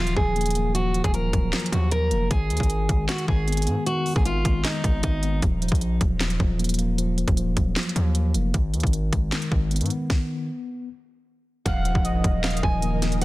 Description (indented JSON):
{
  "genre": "hip hop, trap",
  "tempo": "154 BPM",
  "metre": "4/4",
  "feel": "half-time",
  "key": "Eb minor",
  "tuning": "A4 = 440 Hz",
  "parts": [
    { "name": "picked steel-string acoustic guitar", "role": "melody", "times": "0.0-5.4, 11.7-13.2 s", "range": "Eb4 to Ab5", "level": "-28 LUFS", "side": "right 1 dB", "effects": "low-pass filter" },
    { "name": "mellow tine electric piano", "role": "accompaniment", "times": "0.0-13.2 s", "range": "Eb3 to Cb4", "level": "-28 LUFS", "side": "left 1 dB", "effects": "medium stereo tremolo, low-pass filter" },
    { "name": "distorted 808-style bass", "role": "bass", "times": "0.0-13.2 s", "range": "Eb1 to Ab2", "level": "-25 LUFS", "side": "equal", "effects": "distortion" },
    { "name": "trap drum kit", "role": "drums", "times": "0.1-13.2 s", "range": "handclaps, hi-hat, kick drum, snare drum", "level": "-24 LUFS", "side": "equal", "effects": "none" },
    { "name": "warm velvety synth lead", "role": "second line", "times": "11.7-13.2 s", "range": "Eb5 to F5", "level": "-33 LUFS", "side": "right 2 dB", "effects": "chorus, tape echo" },
    { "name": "ethereal airy pad", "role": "sustained chords", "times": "12.2-13.2 s", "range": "Eb3 to Bb4", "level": "-33 LUFS", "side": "left 1 dB", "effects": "ensemble chorus, built-in reverb" },
    { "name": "impact", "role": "sound effects", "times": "11.7-13.2 s", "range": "none", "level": "-33 LUFS", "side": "equal", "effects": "none" }
  ],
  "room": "little or no reverb",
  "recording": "dense, heavily limited modern master",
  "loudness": "-21 LUFS",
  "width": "side -19 dB against mid",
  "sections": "0.0-11.7 A section; 11.7-13.2 B section",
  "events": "stop 10.1-11.7; impact 11.7-13.2",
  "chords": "0.0 Ebmadd9; 2.3 Abm; 5.4 Ebmadd9; 8.5 Abm; 11.7 Ebmadd9",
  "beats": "0.36 | 0.75 1.14 1.53 1.92 | 2.31 2.70 3.09 3.48 | 3.87 4.26 4.64 5.04 | 5.42 5.81 6.20 6.59 | 6.98 7.37 7.76 8.15 | 8.54 8.93 9.32 9.71 | 10.10 10.49 10.88 11.27 | 11.66 12.05 12.44 12.83 | 13.22"
}